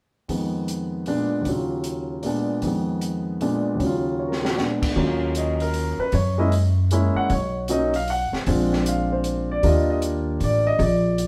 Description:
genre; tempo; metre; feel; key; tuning
jazz piano trio; 154 BPM; 3/4; swing 64% on 8ths; Eb minor; A4 = 441 Hz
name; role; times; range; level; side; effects
warm concert grand piano; melody; 0.3-11.3 s; Eb2 to Gb5; -25 LUFS; equal; none
open jazz drum kit; drums; 0.3-11.3 s; crash cymbal, hi-hat, kick drum, snare drum; -34 LUFS; equal; none
upright bass; bass; 5.0-11.3 s; A1 to Gb2; -25 LUFS; equal; none
room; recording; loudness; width
wet stone room reverb, RT60 1.0 s; band playing live in one room; -23 LUFS; mono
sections
0.3-5.0 A section; 5.0-11.3 B section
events
drum fill 4.2-4.6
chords
0.3 Fm7b5; 1.1 Bb7b9; 1.5 Ebm9; 2.2 Bb7b9; 2.6 Fm7b5; 3.4 Bb7b9; 3.8 Ebm9; 4.6 Bb7b9; 5.0 Ebm9; 6.1 Gb9; 7.3 Badd9; 8.5 Bb9; 9.6 Ebmaj7

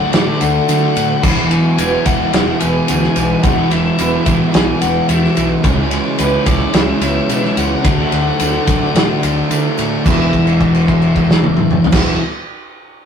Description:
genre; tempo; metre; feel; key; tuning
rock, shoegaze and dream pop; 109 BPM; 4/4; straight; E mixolydian; A4 = 443 Hz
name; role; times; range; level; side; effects
nasal lead guitar with a parked wah; melody; 0.0-12.2 s; B4 to B5; -22 LUFS; left 5 dB; overdrive
picked twelve-string acoustic guitar; arpeggios; 0.0-12.2 s; E3 to A4; -24 LUFS; right 3 dB; none
overdriven semi-hollow guitar; riff; 0.0-12.2 s; C#3 to F#4; -20 LUFS; right 6 dB; none
overdriven semi-hollow guitar; riff; 0.0-12.2 s; E2 to D4; -22 LUFS; equal; phaser
thick fuzz guitar; riff; 0.0-12.2 s; E2 to D4; -18 LUFS; left 4 dB; distortion
fuzz fingered electric bass; bass; 0.0-12.2 s; E1 to D3; -22 LUFS; equal; overdrive
loose indie drum kit; drums; 0.1-12.1 s; crash cymbal, kick drum, ride cymbal, snare drum, toms; -17 LUFS; equal; none
tambourine; percussion; 0.1-10.3 s; none; -34 LUFS; right 7 dB; none
room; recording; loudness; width
moderate studio reverb, RT60 0.6 s; rough rehearsal-room recording, tube saturation; -12 LUFS; side -7 dB against mid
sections
0.0-10.1 A section; 10.1-12.3 B section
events
held note 10.1-11.9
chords
0.0 D; 1.2 Eadd9; 5.6 C#m7; 7.8 D; 10.1 Eadd9

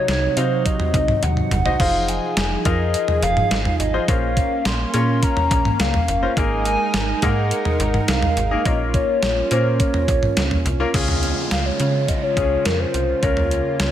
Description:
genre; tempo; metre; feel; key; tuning
synth-pop; 105 BPM; 4/4; straight; Bb minor; A4 = 440 Hz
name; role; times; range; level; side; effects
hollow clarinet-like synth lead; melody; 0.0-13.9 s; Bb4 to C6; -22 LUFS; equal; chorus, phaser, tape echo
warm analog pad; sustained chords; 0.0-13.9 s; C3 to Bb4; -26 LUFS; right 2 dB; chorus
slap-like FM bass; bass; 0.1-13.9 s; F1 to Db3; -23 LUFS; equal; none
detuned 8-bit digital drum machine; drums; 0.1-13.9 s; cowbell, crash cymbal, hi-hat, kick drum, snare drum, toms; -22 LUFS; equal; gated reverb
clear concert grand piano; accompaniment; 0.4-13.9 s; Bb3 to F5; -26 LUFS; left 4 dB; none
downlifter; sound effects; 10.9-13.9 s; none; -30 LUFS; equal; none
room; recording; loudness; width
light reverb; none; -17 LUFS; side -11 dB against mid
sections
0.0-10.9 A section; 10.9-13.9 B section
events
drum fill 1.2-1.8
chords
0.0 Cdim; 1.8 Fm7; 4.1 Bbmadd9; 6.4 Absus2; 8.7 Bbm; 10.9 Db; 13.2 Bbm/Db

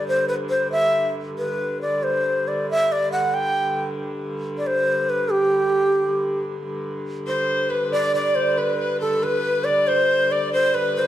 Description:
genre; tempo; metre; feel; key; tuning
medieval dance; 92 BPM (dotted quarters); 6/8; straight; G major; A4 = 441 Hz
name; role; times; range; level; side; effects
breathy bright long shakuhachi; melody; 0.0-11.1 s; G4 to G5; -20 LUFS; equal; none
dark hurdy-gurdy; drone; 0.0-11.1 s; G2 to D3; -29 LUFS; equal; none
concert harp; second line; 7.3-11.1 s; A4 to D5; -27 LUFS; right 5 dB; none
rich fiddle; second line; 7.3-11.1 s; A4 to D5; -27 LUFS; left 4 dB; none
room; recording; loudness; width
wet recital hall reverb, RT60 1.4 s; dark, warm production; -19 LUFS; side -12 dB against mid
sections
0.0-6.6 A section; 6.6-11.1 A section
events
none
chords
none

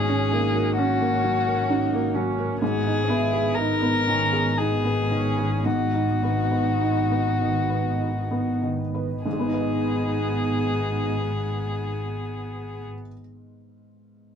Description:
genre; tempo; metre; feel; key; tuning
neoclassical piano and strings; 47-66 BPM; 3/4; rubato; G# minor; A4 = 440 Hz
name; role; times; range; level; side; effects
muted violin; melody; 0.0-12.8 s; F#4 to A#4; -27 LUFS; left 4 dB; none
muted cello; second line; 0.0-12.9 s; B3 to E4; -31 LUFS; right 4 dB; none
felt-muted upright piano; accompaniment; 0.0-14.4 s; G#2 to D#5; -27 LUFS; right 1 dB; none
airy breathy pad; sustained chords; 0.0-12.9 s; A#3 to D#5; -32 LUFS; right 1 dB; chorus
muted double bass; bass; 0.0-12.8 s; G#1; -28 LUFS; equal; none
room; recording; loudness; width
moderate small room ambience, RT60 0.5 s; band playing live in one room; -21 LUFS; side -7 dB against mid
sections
0.0-9.2 A section; 9.2-13.0 B section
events
slowing down 1.2-9.2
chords
0.0 F#/G#; 2.6 G#m

